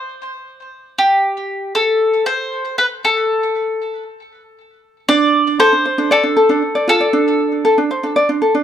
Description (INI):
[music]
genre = folktronica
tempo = 117 BPM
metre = 4/4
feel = straight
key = unclear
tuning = A4 = 441 Hz
[part]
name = mandolin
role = melody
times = 1.0-8.6 s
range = G4 to D5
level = -16 LUFS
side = left 1 dB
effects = digital delay
[part]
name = ukulele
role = arpeggios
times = 5.1-8.6 s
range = D4 to D5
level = -14 LUFS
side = right 1 dB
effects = digital delay
[sound]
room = moderate studio reverb, RT60 0.5 s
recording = none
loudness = -13 LUFS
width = side -9 dB against mid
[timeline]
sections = 0.0-5.1 A section; 5.1-8.6 B section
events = none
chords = 0.0 N.C.; 5.1 D5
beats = 0.47 | 0.98 1.50 2.01 2.52 | 3.04 3.55 4.06 4.57 | 5.09 5.60 6.11 6.62 | 7.14 7.65 8.16